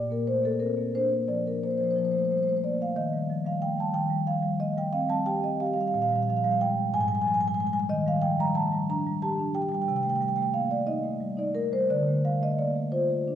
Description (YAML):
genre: classical, contemporary piece for solo marimba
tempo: 60 BPM (dotted quarters)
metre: 6/8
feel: rubato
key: Bb major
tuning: A4 = 440 Hz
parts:
  - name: marimba with soft mallets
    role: solo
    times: 0.0-13.4 s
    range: Ab2 to Bb5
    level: -24 LUFS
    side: equal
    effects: none
room: wet recital hall reverb, RT60 1.5 s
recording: heard from further back in the room, nothing above 10.7 kHz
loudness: -24 LUFS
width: side -10 dB against mid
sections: 0.0-13.4 A section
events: none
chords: 0.0 Bb; 2.0 Fadd9; 3.0 Eb; 4.0 Eb6; 5.9 Bb5; 6.9 Fmadd9/Ab; 7.9 Ebmaj7#11; 9.9 Cm6; 11.9 Dm7